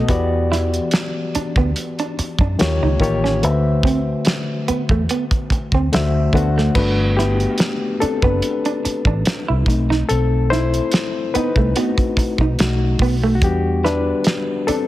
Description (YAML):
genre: R&B, neo-soul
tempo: 72 BPM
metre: 4/4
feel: swing 53% on 16ths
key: G major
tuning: A4 = 441 Hz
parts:
  - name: electric guitar through a small old amp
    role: second line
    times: 0.0-14.8 s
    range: A3 to E4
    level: -25 LUFS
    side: right 4 dB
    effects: none
  - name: bright reed electric piano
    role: accompaniment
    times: 0.0-14.9 s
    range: B2 to F#5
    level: -20 LUFS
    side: left 3 dB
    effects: overdrive
  - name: vintage muted fingered electric bass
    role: bass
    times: 0.1-14.7 s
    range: F#1 to F#2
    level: -20 LUFS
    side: equal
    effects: none
  - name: cloth-damped thuddy drum kit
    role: drums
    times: 0.1-14.9 s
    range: crash cymbal, hi-hat, kick drum, snare drum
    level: -20 LUFS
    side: equal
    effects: none
room: light reverb, small room ambience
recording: heavily compressed radio sound, multiband compression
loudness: -16 LUFS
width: side -15 dB against mid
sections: 0.0-6.8 A section; 6.8-14.9 A section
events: reed electric piano solo 6.8-14.9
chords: 0.1 Em9; 2.6 Eb9; 3.4 D13; 6.8 Gmaj9; 9.7 B7b9; 12.6 B7; 13.4 Em9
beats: | 0.09 0.92 1.75 2.58 | 3.42 4.25 5.08 5.92 | 6.75 7.58 8.42 9.25 | 10.09 10.92 11.75 12.59 | 13.42 14.25